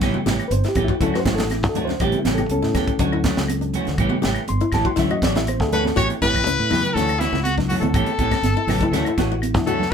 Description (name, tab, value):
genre	afrobeat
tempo	121 BPM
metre	4/4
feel	straight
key	A mixolydian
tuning	A4 = 439 Hz
part	reed electric piano	accompaniment	0.0-9.9 s	C#3 to C6	-24 LUFS	left 2 dB	none
part	semi-hollow electric guitar	stabs	0.0-9.8 s	E3 to G4	-27 LUFS	right 5 dB	none
part	fingered electric bass	bass	0.0-9.9 s	G1 to A2	-24 LUFS	equal	none
part	tight funk drum kit	drums	0.0-9.9 s	hi-hat, kick drum, snare drum	-25 LUFS	equal	none
part	claves	percussion	0.0-9.5 s	none	-35 LUFS	left 5 dB	none
part	flamenco guitar	arpeggios	0.1-9.9 s	C#4 to G4	-26 LUFS	left 6 dB	none
part	congas	percussion	0.3-9.9 s	none	-28 LUFS	right 6 dB	none
part	brilliant trumpet	melody	5.7-9.9 s	E4 to C#5	-22 LUFS	left 3 dB	none
room	moderate studio ambience, RT60 0.5 s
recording	band playing live in one room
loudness	-18 LUFS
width	side -7 dB against mid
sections	0.0-6.0 A section; 6.0-9.9 B section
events	reed electric piano solo 0.0-6.0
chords	0.0 A7; 1.0 Dmaj9; 2.0 A7; 3.0 Dmaj9; 4.0 A7; 5.0 Dmaj9; 6.0 A7; 7.0 Dmaj9; 7.9 A7; 8.9 Dmaj9